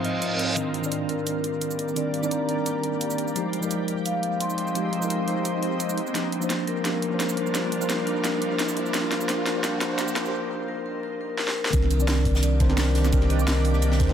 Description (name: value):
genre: liquid drum and bass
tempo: 172 BPM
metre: 4/4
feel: swing 54% on 16ths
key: C minor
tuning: A4 = 440 Hz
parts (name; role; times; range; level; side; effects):
- mellow tine electric piano; accompaniment; 0.0-14.1 s; Eb3 to D6; -27 LUFS; right 1 dB; medium stereo tremolo, tape echo
- shimmering ambient pad; sustained chords; 0.0-14.1 s; Ab2 to D5; -32 LUFS; right 1 dB; chorus, built-in reverb, sidechain pumping
- vibraphone with medium hard mallets; arpeggios; 0.0-14.1 s; Bb4 to Eb6; -31 LUFS; left 4 dB; tape echo
- drum and bass drum kit; drums; 0.0-14.1 s; cabasa, hi-hat, snare drum; -30 LUFS; right 1 dB; overdrive, high-pass filter on hats, high-pass filter on perc, high-pass filter on snare, high-pass filter on room
- reverse cymbal and riser; sound effects; 0.0-10.3 s; none; -35 LUFS; right 1 dB; none
- warm sub bass; bass; 0.6-14.1 s; F1 to D2; -21 LUFS; equal; high-pass filter
- electronic kick drum; drums; 11.7-14.1 s; none; -24 LUFS; equal; overdrive
- unplugged drum kit; drums; 11.7-14.1 s; ride cymbal, snare drum; -36 LUFS; right 1 dB; high-pass filter on cymbals, high-pass filter on snare, high-pass filter on room, tape echo
room: moderate spring reverb, RT60 2.2 s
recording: echo-heavy mix, high-pass filter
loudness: -22 LUFS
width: side -9 dB against mid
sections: 0.6-11.7 A section; 11.7-14.1 B section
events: reverse cymbal 0.0-0.6; build-up 0.6-11.7; riser 0.6-10.3; filter sweep 0.6-11.7; drum fill 6.2-10.3, 11.4-11.7; break 10.3-11.7; drop 11.7-14.1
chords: 0.0 Ab6; 0.6 Cm9; 3.4 Fm9; 6.0 Gm7; 8.9 Ab6; 11.7 Cm9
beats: 0.22 | 0.57 0.92 1.27 1.61 | 1.96 2.31 2.66 3.01 | 3.36 3.71 4.06 4.41 | 4.75 5.10 5.45 5.80 | 6.15 6.50 6.85 7.20 | 7.54 7.89 8.24 8.59 | 8.94 9.29 9.64 9.99 | 10.34 10.69 11.03 11.38 | 11.73 12.08 12.43 12.78 | 13.13 13.48 13.82